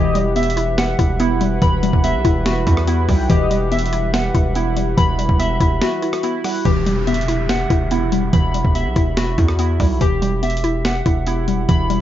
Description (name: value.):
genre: hip hop, trap.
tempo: 143 BPM.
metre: 4/4.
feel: half-time.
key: E minor.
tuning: A4 = 441 Hz.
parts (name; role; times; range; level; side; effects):
warm velvety synth lead; second line; 0.0-6.6 s; D#5 to G5; -26 LUFS; left 2 dB; chorus, digital delay.
hollow square pluck; accompaniment; 0.0-12.0 s; E3 to E4; -22 LUFS; left 2 dB; chorus, low-pass filter.
warm analog pad; sustained chords; 0.0-6.6 s; E3 to F#5; -28 LUFS; right 1 dB; chorus.
warbly lo-fi synth keys; arpeggios; 0.0-12.0 s; E4 to B5; -22 LUFS; right 1 dB; chorus, low-pass filter, digital delay.
distorted 808-style bass; bass; 0.0-12.0 s; E1 to E2; -21 LUFS; equal; distortion.
breakbeat sampler-style drum kit; drums; 0.2-12.0 s; hi-hat, kick drum, rim click, snare drum; -19 LUFS; equal; none.
downlifter; sound effects; 6.7-10.0 s; none; -32 LUFS; equal; none.
room: light reverb.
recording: dark, warm production, nothing above 7.5 kHz.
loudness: -15 LUFS.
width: side -12 dB against mid.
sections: 0.0-6.7 A section; 6.7-12.0 B section.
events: break 5.8-6.7.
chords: 0.0 Emadd9.